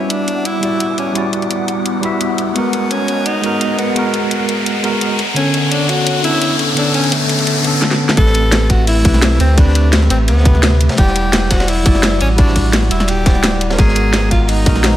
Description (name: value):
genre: liquid drum and bass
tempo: 171 BPM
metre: 4/4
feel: straight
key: unclear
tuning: A4 = 438 Hz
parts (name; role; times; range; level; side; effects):
- warm tenor saxophone; melody; 0.0-15.0 s; A3 to Bb4; -20 LUFS; equal; dub echo
- tine electric piano; accompaniment; 0.0-15.0 s; C3 to F#5; -18 LUFS; equal; medium stereo tremolo, vintage 12-bit sampler grit, dub echo
- glassy FM pad; sustained chords; 0.0-15.0 s; G3 to D6; -25 LUFS; left 2 dB; ensemble chorus, built-in reverb
- warm sub bass; bass; 0.0-15.0 s; D1 to E2; -14 LUFS; equal; high-pass filter
- riser; sound effects; 0.1-7.8 s; none; -20 LUFS; left 2 dB; none
- drum and bass drum kit; drums; 0.1-14.9 s; hi-hat, snare drum; -18 LUFS; equal; overdrive, studio reverb
- crunchy breakbeat drum kit; drums; 8.2-15.0 s; hi-hat, ride cymbal, snare drum; -24 LUFS; equal; high-pass filter on cymbals, studio reverb, high-pass filter on hats, high-pass filter on snare, high-pass filter on room
- electronic kick drum; drums; 8.2-14.7 s; none; -12 LUFS; equal; overdrive, studio reverb
room: light reverb, small room reverb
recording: none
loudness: -12 LUFS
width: side -12 dB against mid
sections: 0.0-8.2 A section; 8.2-15.0 B section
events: build-up 0.0-8.2; riser 0.1-7.8; drum fill 7.8-8.2; drop 8.2-15.0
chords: 0.0 Em9; 2.6 G#m9; 5.2 Bm9; 8.2 Am9; 11.0 Em9; 13.8 G#m9